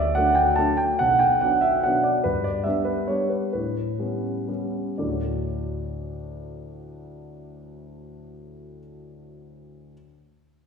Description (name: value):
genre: classical, piano waltz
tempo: 114-152 BPM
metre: 3/4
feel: rubato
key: D major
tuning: A4 = 442 Hz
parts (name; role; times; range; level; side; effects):
- warm grand piano; solo; 0.0-9.9 s; B1 to A5; -22 LUFS; equal; none
room: wet recital hall reverb, RT60 1.6 s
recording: recorded in a church or concert hall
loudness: -21 LUFS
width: side -6 dB against mid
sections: 0.0-5.0 A section; 5.0-7.8 B section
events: slowing down 1.6-5.0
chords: 0.0 D; 1.0 Bm; 2.2 G; 3.5 A9; 5.0 D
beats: 0.16 0.58 | 1.00 1.41 1.83 | 2.25 2.65 3.08 | 3.53 3.99 4.48 | 4.99 5.46 5.93 | 6.39 6.85 7.33